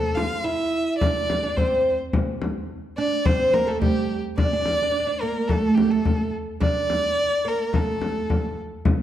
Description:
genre	Arabic maqam ensemble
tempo	107 BPM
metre	4/4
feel	straight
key	unclear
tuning	A4 = 438 Hz
part	bright violin	melody	0.0-8.6 s	G4 to F5	-25 LUFS	equal	none
part	oud	second line	0.0-8.5 s	G3 to F4	-25 LUFS	right 2 dB	none
part	frame drum	percussion	0.2-9.0 s	none	-24 LUFS	left 2 dB	none
room	wet recital hall reverb, RT60 1.3 s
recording	dark, warm production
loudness	-20 LUFS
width	side -11 dB against mid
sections	0.0-8.9 A section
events	none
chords	none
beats	0.45 1.01 1.57 | 2.13 2.69 3.25 3.81 | 4.37 4.93 5.49 6.05 | 6.62 7.18 7.74 8.30 | 8.86

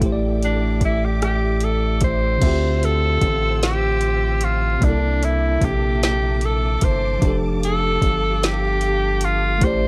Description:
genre	slow six-eight R&B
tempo	50 BPM (dotted quarters)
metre	6/8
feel	straight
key	D minor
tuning	A4 = 440 Hz
part	tine electric piano	accompaniment	0.0-9.9 s	C3 to E5	-28 LUFS	equal	none
part	warm studio string section	sustained chords	0.0-9.9 s	Bb3 to E6	-36 LUFS	equal	none
part	rubbery square bass	bass	0.0-9.9 s	F1 to D2	-24 LUFS	equal	none
part	smooth R&B drum kit	drums	0.0-9.8 s	crash cymbal, hi-hat, kick drum, rim click, snare drum	-24 LUFS	equal	none
part	warm tenor saxophone	melody	0.4-9.9 s	D4 to C5	-24 LUFS	equal	none
room	little or no reverb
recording	dark, warm production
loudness	-20 LUFS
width	mono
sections	0.0-2.4 A section; 2.4-9.9 B section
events	tenor saxophone solo 0.0-2.4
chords	0.0 A7sus4; 2.4 Dm11; 4.8 C13; 7.2 F69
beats	| 0.02 1.22 | 2.42 3.62 | 4.82 6.02 | 7.22 8.42 | 9.62

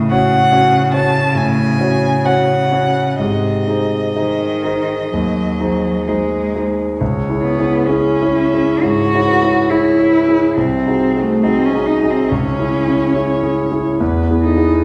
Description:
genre	classical, slow romantic movement for piano trio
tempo	60-74 BPM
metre	4/4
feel	rubato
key	C# minor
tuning	A4 = 440 Hz
part	rich cello	second line	0.0-14.8 s	B#2 to F#4	-21 LUFS	equal	none
part	warm concert grand piano	accompaniment	0.0-14.8 s	B#1 to C#5	-18 LUFS	equal	none
part	dark violin	melody	0.1-14.8 s	G#4 to A5	-24 LUFS	equal	none
room	wet recital hall reverb, RT60 1.4 s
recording	heard from further back in the room, nothing above 10.7 kHz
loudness	-15 LUFS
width	mono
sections	0.0-7.0 A section; 7.0-14.8 B section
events	none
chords	0.0 F#m/A; 3.2 G#; 7.0 C#m; 10.6 G#7/B#; 12.3 C#m; 14.0 E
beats	0.52 1.37 2.26 | 3.20 4.16 5.12 6.07 | 7.00 7.89 8.84 9.69 | 10.56 11.44 12.30 13.14 | 14.00 14.84

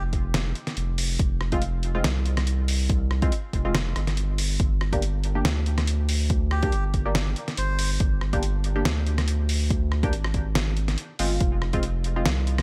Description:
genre	deep dubstep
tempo	141 BPM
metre	4/4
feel	swing 54% on 16ths, half-time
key	G phrygian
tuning	A4 = 440 Hz
part	melodica	melody	0.0, 6.5-7.9 s	G4 to C5	-38 LUFS	equal	dub echo
part	saturated sub bass	bass	0.0-12.6 s	F1 to D2	-27 LUFS	equal	none
part	electronic kick drum	drums	0.1-11.8 s	none	-28 LUFS	equal	overdrive
part	trip hop sampler-style drum kit	drums	0.1-12.6 s	hi-hat, rim click, snare drum	-31 LUFS	equal	none
part	filtered dub chord stab	stabs	1.5-12.3 s	Ab3 to G4	-34 LUFS	equal	subtle chorus, dub echo
room	little or no reverb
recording	none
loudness	-25 LUFS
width	mono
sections	0.0-12.6 A section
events	none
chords	0.0 F5; 4.6 G5; 11.4 Fm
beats	0.34 0.77 | 1.19 1.62 2.04 2.47 | 2.90 3.32 3.75 4.17 | 4.60 5.02 5.45 5.87 | 6.30 6.73 7.15 7.58 | 8.00 8.43 8.85 9.28 | 9.70 10.13 10.55 10.98 | 11.41 11.83 12.26

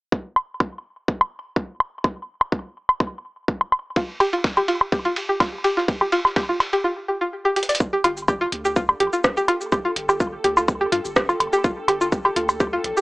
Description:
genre	minimal techno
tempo	125 BPM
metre	4/4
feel	swing 53% on 16ths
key	G minor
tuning	A4 = 441 Hz
part	electronic kick drum	drums	0.1-12.7 s	none	-23 LUFS	equal	overdrive
part	woodblock	percussion	0.4-12.6 s	none	-19 LUFS	equal	tape echo
part	string-like resonator pluck	riff	4.0-13.0 s	F4 to D5	-21 LUFS	equal	chorus, sidechain pumping, analog delay
part	dusty soul sampler-style drum kit	drums	4.0-6.8 s	ride cymbal, snare drum	-29 LUFS	equal	sidechain pumping on cymbals, high-pass filter on cymbals, high-pass filter on snare
part	booming analog drum machine	drums	7.6-13.0 s	cabasa, hi-hat, rim click	-24 LUFS	equal	overdrive
part	punchy sub bass	bass	7.8-12.9 s	G1 to G2	-39 LUFS	equal	sidechain pumping
part	airy breathy pad	texture	7.8-13.0 s	Bb3 to G5	-43 LUFS	equal	none
part	swarming drone	texture	8.6-13.0 s	A4	-33 LUFS	equal	built-in reverb, sidechain pumping
room	light reverb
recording	dry, gritty hardware recording, small speaker sound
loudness	-20 LUFS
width	side -22 dB against mid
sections	0.1-7.8 A section; 7.8-13.0 B section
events	drum fill 7.6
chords	0.1 G5; 7.8 Gm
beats	| 0.12 0.60 1.08 1.56 | 2.04 2.52 3.00 3.48 | 3.96 4.44 4.92 5.40 | 5.88 6.36 6.84 7.32 | 7.80 8.28 8.76 9.24 | 9.72 10.20 10.68 11.16 | 11.64 12.12 12.60

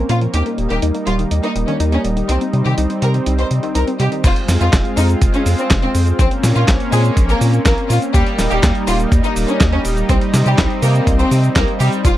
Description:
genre	italo disco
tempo	123 BPM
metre	4/4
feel	straight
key	F minor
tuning	A4 = 440 Hz
part	lush unison pad	sustained chords	0.0-12.2 s	G3 to F4	-20 LUFS	equal	chorus, vintage 12-bit sampler grit
part	analog pluck	arpeggios	0.0-4.2, 12.0-12.2 s	Eb3 to F4	-24 LUFS	left 2 dB	chorus, phaser, tape echo
part	round analog bass	bass	0.0-12.1 s	Eb1 to C3	-16 LUFS	equal	none
part	bright studio violin section	melody	0.1-12.1 s	G3 to C5	-21 LUFS	left 1 dB	tape echo
part	dusty soul sampler-style drum kit	drums	0.1-12.1 s	cabasa, crash cymbal, handclaps, hi-hat, snare drum	-21 LUFS	equal	none
part	electronic kick drum	drums	4.2-12.1 s	none	-16 LUFS	equal	none
room	little or no reverb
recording	dry, close 1970s-style studio recording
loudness	-13 LUFS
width	side -14 dB against mid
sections	0.0-4.2 A section; 4.2-12.2 B section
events	filter sweep on synth arpeggio sound 0.0-4.2; filter sweep on analog synth pad 0.0-4.2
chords	0.3 Eb; 2.3 Cm; 4.2 Fm; 6.2 Bbmadd9; 8.1 Eb; 10.1 Cm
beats	| 0.34 0.83 1.32 1.80 | 2.29 2.78 3.27 3.75 | 4.24 4.73 5.22 5.71 | 6.19 6.68 7.17 7.66 | 8.14 8.63 9.12 9.61 | 10.10 10.58 11.07 11.56 | 12.05

